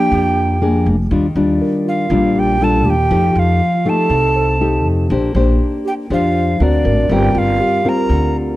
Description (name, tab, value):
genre	bossa nova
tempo	120 BPM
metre	4/4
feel	straight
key	Bb major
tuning	A4 = 440 Hz
part	mellow hollow tenor recorder	melody	0.0-8.4 s	D5 to Bb5	-19 LUFS	equal	none
part	breathy alto flute	second line	0.0-8.4 s	D4 to Bb4	-23 LUFS	right 7 dB	none
part	nylon-string guitar	accompaniment	0.0-8.6 s	Bb2 to C5	-16 LUFS	left 2 dB	none
part	upright bass	bass	0.1-8.6 s	F1 to F2	-17 LUFS	equal	none
part	mellow tine electric piano	accompaniment	1.6-8.6 s	G4 to D5	-26 LUFS	right 4 dB	medium stereo tremolo
room	little or no reverb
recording	dry, close 1970s-style studio recording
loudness	-13 LUFS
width	side -16 dB against mid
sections	0.0-8.6 A section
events	none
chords	0.0 Bb7/F; 1.1 Ebmaj9; 3.1 F9; 5.1 Bb69; 6.6 D7b13; 7.1 Gm7